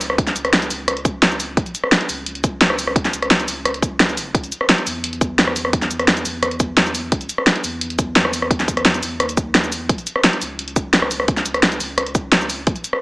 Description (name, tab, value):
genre	liquid drum and bass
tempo	173 BPM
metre	4/4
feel	straight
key	unclear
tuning	A4 = 440 Hz
part	warm sub bass	bass	0.0-12.8 s	F1 to Fb2	-30 LUFS	equal	tube saturation
part	pop drum kit	drums	0.0-13.0 s	hi-hat, rim click, shaker, snare drum	-16 LUFS	equal	none
part	electronic kick drum	drums	0.2-12.7 s	none	-19 LUFS	equal	none
room	light reverb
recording	small speaker sound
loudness	-16 LUFS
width	side -23 dB against mid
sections	0.0-13.0 A section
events	none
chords	none